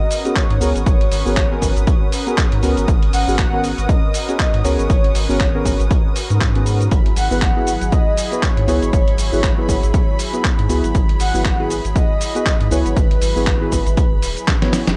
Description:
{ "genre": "deep house", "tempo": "119 BPM", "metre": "4/4", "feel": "swing 58% on 16ths", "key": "unclear", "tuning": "A4 = 439 Hz", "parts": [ { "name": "breathy flute-like synth lead", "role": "melody", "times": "0.0-14.5 s", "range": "B4 to F#5", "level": "-27 LUFS", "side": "equal", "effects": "analog chorus, tape echo" }, { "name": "warm analog pad", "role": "sustained chords", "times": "0.0-14.9 s", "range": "F#3 to B4", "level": "-31 LUFS", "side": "equal", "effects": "chorus, sidechain pumping" }, { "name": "clear chamber violin section", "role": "texture", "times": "0.0-15.0 s", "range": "B5 to D#6", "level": "-36 LUFS", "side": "equal", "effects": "sidechain pumping" }, { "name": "dusty soul sampler-style drum kit", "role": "drums", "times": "0.1-15.0 s", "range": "cabasa, handclaps, hi-hat, snare drum", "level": "-27 LUFS", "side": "equal", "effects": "vintage 12-bit sampler grit" }, { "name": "deep mellow chord stab", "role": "stabs", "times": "0.2-14.9 s", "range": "B3 to C#5", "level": "-26 LUFS", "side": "equal", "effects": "chorus, sidechain pumping" }, { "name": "electronic kick drum", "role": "drums", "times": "0.4-14.6 s", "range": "none", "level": "-19 LUFS", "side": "equal", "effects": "vintage 12-bit sampler grit" }, { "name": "round analog bass", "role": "bass", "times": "0.5-15.0 s", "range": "D#1 to G#2", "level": "-23 LUFS", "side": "equal", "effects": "sidechain pumping" } ], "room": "digital ambience", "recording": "none", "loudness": "-17 LUFS", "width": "mono", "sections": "0.0-15.0 A section", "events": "drop 0.0-15.0; drum fill 14.5-15.0", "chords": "0.0 G#m11; 6.9 Eadd9/G#" }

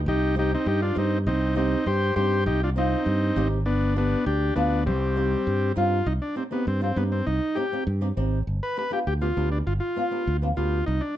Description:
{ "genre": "latin, cumbia", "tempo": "200 BPM", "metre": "4/4", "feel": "straight", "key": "C harmonic minor", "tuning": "A4 = 440 Hz", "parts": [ { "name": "fingered electric bass", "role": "bass", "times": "0.0-11.0 s", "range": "G1 to G2", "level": "-25 LUFS", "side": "equal", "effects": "none" }, { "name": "combo organ", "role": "melody", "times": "0.1-11.2 s", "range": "G3 to C5", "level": "-25 LUFS", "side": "left 1 dB", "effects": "none" }, { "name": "flamenco guitar", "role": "accompaniment", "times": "0.4-10.8 s", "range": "B3 to G4", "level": "-30 LUFS", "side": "equal", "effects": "none" } ], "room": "light reverb", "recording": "dark, warm production", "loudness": "-22 LUFS", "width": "side -12 dB against mid", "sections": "0.0-6.1 A section; 6.1-11.2 B section", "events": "none", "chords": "0.1 Cm; 3.7 G7; 4.9 Cm; 8.5 G7" }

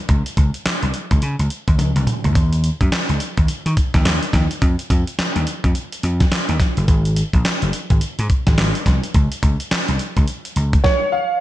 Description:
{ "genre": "R&B, new jack swing", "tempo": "106 BPM", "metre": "4/4", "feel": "swing 61% on 16ths", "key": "Eb dorian", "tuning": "A4 = 445 Hz", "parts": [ { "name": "vintage slap bass", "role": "bass", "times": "0.1-10.8 s", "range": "Gb1 to Eb3", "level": "-19 LUFS", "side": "equal", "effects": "none" }, { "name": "dusty soul sampler-style drum kit", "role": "drums", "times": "0.1-11.0 s", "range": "handclaps, hi-hat, kick drum, snare drum, toms", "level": "-18 LUFS", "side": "equal", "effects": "vintage 12-bit sampler grit, gated reverb" }, { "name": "warm concert grand piano", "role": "melody", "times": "10.8-11.4 s", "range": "Db5 to F5", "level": "-16 LUFS", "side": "right 2 dB", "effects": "analog chorus" } ], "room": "light reverb, digital ambience", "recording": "bright 1980s-style digital production", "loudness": "-16 LUFS", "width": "side -14 dB against mid", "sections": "0.0-11.4 A section", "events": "drum fill 1.8-2.4", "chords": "0.1 N.C.; 4.6 Ebsus2; 6.9 N.C." }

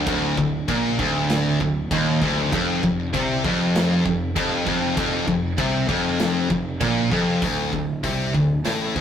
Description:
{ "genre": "heavy metal", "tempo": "98 BPM", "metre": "4/4", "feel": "straight", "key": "unclear", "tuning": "A4 = 440 Hz", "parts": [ { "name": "distorted electric guitar", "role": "riff", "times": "0.0-7.4 s", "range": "D2 to C3", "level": "-24 LUFS", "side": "right 1 dB", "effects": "overdrive" }, { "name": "high-gain distorted guitar", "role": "riff", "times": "0.0-9.0 s", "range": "D2 to C3", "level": "-23 LUFS", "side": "left 4 dB", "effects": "distortion" }, { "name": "scooped high-gain guitar", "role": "riff", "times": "0.0-9.0 s", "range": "D2 to C3", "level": "-27 LUFS", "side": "right 5 dB", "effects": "distortion" }, { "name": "fuzz picked electric bass", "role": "bass", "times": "0.0-9.0 s", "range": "D1 to C2", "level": "-31 LUFS", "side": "right 1 dB", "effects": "overdrive" }, { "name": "big rock drum kit", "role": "drums", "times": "0.1-9.0 s", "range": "crash cymbal, hi-hat, kick drum, snare drum", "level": "-29 LUFS", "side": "right 1 dB", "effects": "none" } ], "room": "moderate stone room reverb, RT60 1.1 s", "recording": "rough rehearsal-room recording, tube saturation", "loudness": "-19 LUFS", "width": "side -8 dB against mid", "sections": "0.0-7.4 A section; 7.4-9.0 B section", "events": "none", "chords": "0.0 Bbadd11/D; 2.5 F5; 7.4 D5" }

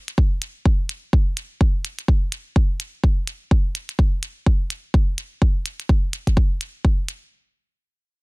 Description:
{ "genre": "minimal techno", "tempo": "126 BPM", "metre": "4/4", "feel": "swing 59% on 16ths", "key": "none", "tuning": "none", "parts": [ { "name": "electronic hi-hat", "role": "drums", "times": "0.1-7.2 s", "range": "none", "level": "-30 LUFS", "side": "equal", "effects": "soft clipping on snare" }, { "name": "electronic kick drum", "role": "drums", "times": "0.2-7.0 s", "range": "none", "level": "-17 LUFS", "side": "equal", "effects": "none" } ], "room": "little or no reverb", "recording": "dense, heavily limited modern master", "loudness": "-19 LUFS", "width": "side -28 dB against mid", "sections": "0.0-7.3 A section", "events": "none", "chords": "none" }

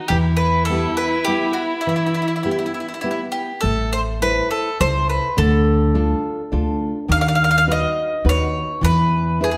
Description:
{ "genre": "italian folk, Italian serenade", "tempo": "103 BPM", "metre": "3/4", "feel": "straight", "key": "E minor", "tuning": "A4 = 440 Hz", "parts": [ { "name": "mandolin", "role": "melody", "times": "0.0-9.6 s", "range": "E4 to F5", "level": "-23 LUFS", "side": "equal", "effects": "none" }, { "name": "rich violin", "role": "second line", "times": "0.0-3.3 s", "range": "D#4 to E4", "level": "-27 LUFS", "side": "equal", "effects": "none" }, { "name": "nylon-string guitar", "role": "accompaniment", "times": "0.1-9.6 s", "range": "D3 to C5", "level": "-25 LUFS", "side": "equal", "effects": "none" }, { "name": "upright bass", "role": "bass", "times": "0.1-0.9, 3.6-9.6 s", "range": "A1 to E2", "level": "-23 LUFS", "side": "equal", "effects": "none" } ], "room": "moderate recital hall reverb, RT60 1.3 s", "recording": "none", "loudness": "-19 LUFS", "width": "mono", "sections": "0.0-3.6 A section; 3.6-9.6 B section", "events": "break 1.8-3.6", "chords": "0.1 Em; 3.6 Am; 5.4 Dm; 7.1 B/D#; 8.8 E" }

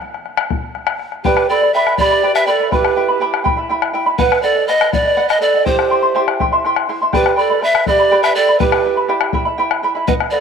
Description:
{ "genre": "andean folk, Andean ensemble", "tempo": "82 BPM (dotted quarters)", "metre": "6/8", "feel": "straight", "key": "E minor", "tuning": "A4 = 440 Hz", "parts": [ { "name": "bombo", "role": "percussion", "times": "0.0-10.3 s", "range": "none", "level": "-20 LUFS", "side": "left 6 dB", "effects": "none" }, { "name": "breathy pan flute", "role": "melody", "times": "1.2-10.4 s", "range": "B4 to E5", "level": "-16 LUFS", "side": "right 1 dB", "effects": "none" }, { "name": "breathy mellow quena", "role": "second line", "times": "1.2-10.4 s", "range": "G4 to F#5", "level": "-22 LUFS", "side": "right 13 dB", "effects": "none" }, { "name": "charango", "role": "accompaniment", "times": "1.3-10.4 s", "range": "E4 to C6", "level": "-17 LUFS", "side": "right 1 dB", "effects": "none" } ], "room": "moderate plate reverb, RT60 2.9 s", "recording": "1960s-style stereo with parts hard left and right", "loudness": "-13 LUFS", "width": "side -6 dB against mid", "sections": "0.0-1.2 A section; 1.2-10.4 B section", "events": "none", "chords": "0.0 N.C.; 1.2 G; 2.7 Em; 4.2 B; 5.7 C; 7.1 G; 8.6 Em" }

